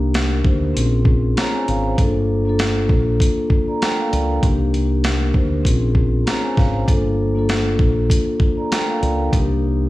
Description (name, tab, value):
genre	hip hop, boom-bap hip-hop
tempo	98 BPM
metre	4/4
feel	swing 56% on 16ths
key	G minor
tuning	A4 = 440 Hz
part	vibraphone with soft mallets	accompaniment	0.0-9.9 s	Bb3 to Bb5	-20 LUFS	left 1 dB	cassette tape, high-pass filter, low-pass filter
part	deep dub fingered electric bass	bass	0.0-9.9 s	G1 to D2	-20 LUFS	equal	none
part	boom bap sampler-style drum kit	drums	0.1-9.5 s	hi-hat, kick drum, snare drum	-19 LUFS	equal	none
room	light reverb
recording	studio reverb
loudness	-16 LUFS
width	side -17 dB against mid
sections	0.0-9.9 A section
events	none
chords	0.0 Cm9; 0.8 Bbm9; 2.0 Gm9; 4.4 Cm9; 5.7 Bbm9; 6.9 Gm9; 9.3 Cm9